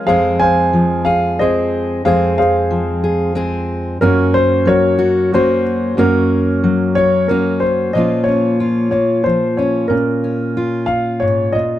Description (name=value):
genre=folk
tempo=92 BPM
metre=3/4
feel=straight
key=Bb minor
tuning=A4 = 439 Hz
part: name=warm concert grand piano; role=melody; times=0.0-11.8 s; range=Db4 to Ab5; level=-15 LUFS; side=equal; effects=none
part: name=fingerpicked steel-string acoustic guitar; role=accompaniment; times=0.0-11.8 s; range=F2 to Ab4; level=-16 LUFS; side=left 1 dB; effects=none
room=little or no reverb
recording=close, detailed microphones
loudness=-13 LUFS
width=side -13 dB against mid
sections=0.0-7.9 A section; 7.9-11.8 B section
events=none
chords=0.1 Fm; 4.0 Gb; 7.9 Bbmadd9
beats=| 0.07 0.73 1.38 | 2.04 2.69 3.35 | 4.00 4.65 5.31 | 5.96 6.62 7.28 | 7.93 8.59 9.25 | 9.91 10.56 11.22